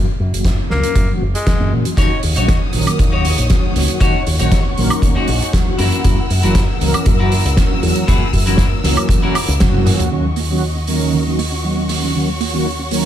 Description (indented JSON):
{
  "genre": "nu-disco, nu disco",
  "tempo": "118 BPM",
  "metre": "4/4",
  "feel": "straight",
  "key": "unclear",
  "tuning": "A4 = 441 Hz",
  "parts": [
    { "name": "mellow synth brass", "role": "accompaniment", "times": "0.0-13.1 s", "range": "D#3 to A#4", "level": "-20 LUFS", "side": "equal", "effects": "chorus, sidechain pumping" },
    { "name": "fingered electric bass with an envelope filter", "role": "bass", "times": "0.0-13.1 s", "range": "F#1 to A#2", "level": "-18 LUFS", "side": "equal", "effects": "none" },
    { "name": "oversized low-tuned drum kit", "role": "drums", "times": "0.3-13.0 s", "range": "hi-hat, snare drum, toms, woodblock", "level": "-22 LUFS", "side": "right 2 dB", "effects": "none" },
    { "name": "kick drum", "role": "drums", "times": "0.4-9.7 s", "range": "none", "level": "-17 LUFS", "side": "equal", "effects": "none" },
    { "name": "raspy tenor saxophone", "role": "melody", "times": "0.7-1.7 s", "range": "G#3 to A#3", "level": "-25 LUFS", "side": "left 2 dB", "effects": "tape echo" },
    { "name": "warm studio string section", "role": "sustained chords", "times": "2.0-13.1 s", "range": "F#4 to E6", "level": "-27 LUFS", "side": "left 2 dB", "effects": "sidechain pumping" },
    { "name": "clean electric guitar", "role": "riff", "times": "2.0-9.9 s", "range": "D#4 to C#5", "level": "-24 LUFS", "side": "left 3 dB", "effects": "lush chorus" },
    { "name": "soft round pluck", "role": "arpeggios", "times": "10.1-13.0 s", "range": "D#3 to D#4", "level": "-25 LUFS", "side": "right 5 dB", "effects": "chorus, sidechain pumping, tape echo" }
  ],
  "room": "small room ambience",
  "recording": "none",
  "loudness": "-13 LUFS",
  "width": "side -11 dB against mid",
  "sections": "0.0-10.1 A section; 10.1-13.1 B section",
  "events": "filter sweep on analog polysynth 0.0-10.1; drum fill 9.6-10.1; band accent 9.6; filter sweep on synth arpeggio sound 10.1-13.1",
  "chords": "0.0 F#7; 2.0 D#m7; 5.8 F#7; 10.1 D#m7"
}